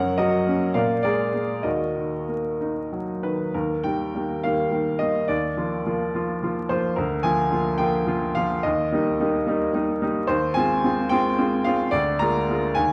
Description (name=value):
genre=classical, romantic character piece for solo piano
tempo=62-74 BPM (dotted quarters)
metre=6/8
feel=rubato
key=Eb minor, Eb major from 3.5 s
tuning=A4 = 438 Hz
part: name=clear upright piano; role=solo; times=0.0-12.9 s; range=D2 to Bb5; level=-23 LUFS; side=equal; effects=none
room=wet recital hall reverb, RT60 1.4 s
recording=vinyl crackle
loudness=-24 LUFS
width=mono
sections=0.0-3.5 A section; 3.5-12.9 B section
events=none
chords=0.0 Gb; 0.7 Bb7; 1.6 Ebm; 3.5 Eb; 5.3 Bb/Eb; 7.0 Bb7/D; 8.6 Eb; 10.3 Fm7/Eb; 11.9 Bb7/D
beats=0.75 | 1.65 2.60 | 3.54 4.43 | 5.28 6.14 | 6.97 7.80 | 8.65 9.47 | 10.29 11.11 | 11.93 12.74